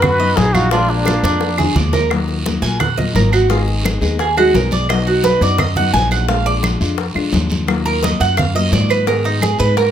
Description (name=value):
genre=latin, Cuban son and guajira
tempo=172 BPM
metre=4/4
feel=straight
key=Eb harmonic minor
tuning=A4 = 440 Hz
part: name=trumpet with plunger mute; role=melody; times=0.0-1.6 s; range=D4 to B4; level=-18 LUFS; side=equal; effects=plate reverb
part: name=brilliant trumpet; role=second line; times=0.0-1.6 s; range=Bb3 to F#4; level=-26 LUFS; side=right 4 dB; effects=none
part: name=nylon-string guitar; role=accompaniment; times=0.0-9.8 s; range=B2 to Ab4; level=-22 LUFS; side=left 5 dB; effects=none
part: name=Cuban tres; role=arpeggios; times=0.0-9.9 s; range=D4 to Ab5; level=-17 LUFS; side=right 4 dB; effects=none
part: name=upright bass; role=bass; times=0.0-9.9 s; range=Ab1 to Ab2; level=-18 LUFS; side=equal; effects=none
part: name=bongos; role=percussion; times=0.0-9.9 s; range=none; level=-26 LUFS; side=left 8 dB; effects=none
part: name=claves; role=percussion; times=0.0-9.6 s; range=none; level=-25 LUFS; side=right 3 dB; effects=none
part: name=congas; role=percussion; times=0.0-9.9 s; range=none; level=-22 LUFS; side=equal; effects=none
part: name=guiro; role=percussion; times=0.0-9.9 s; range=none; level=-28 LUFS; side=right 4 dB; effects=none
room=light reverb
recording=close, detailed microphones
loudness=-13 LUFS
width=side -10 dB against mid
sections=0.0-2.1 A section; 2.1-9.9 B section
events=drum fill 1.2-2.1; Cuban tres solo 2.1-9.9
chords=0.0 B; 0.7 Bb7; 2.1 Ebmadd9; 3.5 Abm; 4.9 B; 6.3 Bb7; 7.7 Ebmadd9; 9.1 Abm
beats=0.02 0.36 | 0.71 1.06 1.41 1.76 | 2.11 2.45 2.80 3.15 | 3.50 3.85 4.20 4.54 | 4.89 5.24 5.59 5.94 | 6.29 6.63 6.98 7.33 | 7.68 8.03 8.38 8.73 | 9.07 9.42 9.77